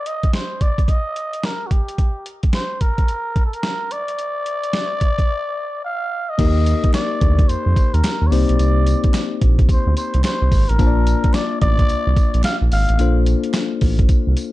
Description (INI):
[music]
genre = R&B, new jack swing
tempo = 109 BPM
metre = 4/4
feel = swing 63% on 16ths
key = Bb major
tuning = A4 = 439 Hz
[part]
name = trumpet with cup mute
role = melody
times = 0.0-13.2 s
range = Gb4 to F5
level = -24 LUFS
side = equal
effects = ping-pong delay
[part]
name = boom bap sampler-style drum kit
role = drums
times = 0.1-14.5 s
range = crash cymbal, hi-hat, kick drum, snare drum, tambourine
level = -18 LUFS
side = equal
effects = none
[part]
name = bell-like tine electric piano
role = accompaniment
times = 6.4-14.5 s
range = Bb3 to A5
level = -23 LUFS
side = left 7 dB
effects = none
[part]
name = smooth synth bass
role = bass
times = 6.4-14.3 s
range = Ab1 to F2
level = -16 LUFS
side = equal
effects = none
[part]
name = group handclap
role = percussion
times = 6.9-13.7 s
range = none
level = -37 LUFS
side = right 5 dB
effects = none
[sound]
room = little or no reverb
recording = dark, warm production, nothing above 10.6 kHz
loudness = -16 LUFS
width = side -17 dB against mid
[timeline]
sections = 0.0-6.4 A section; 6.4-14.5 B section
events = break 5.3-6.4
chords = 0.0 N.C.; 6.4 Ebmaj7; 8.3 Cm7; 10.8 Bbmaj7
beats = 0.33 0.88 1.43 | 1.98 2.53 3.08 3.63 | 4.19 4.74 5.29 5.84 | 6.39 6.94 7.49 8.04 | 8.59 9.14 9.69 10.24 | 10.79 11.34 11.89 12.44 | 12.99 13.54 14.09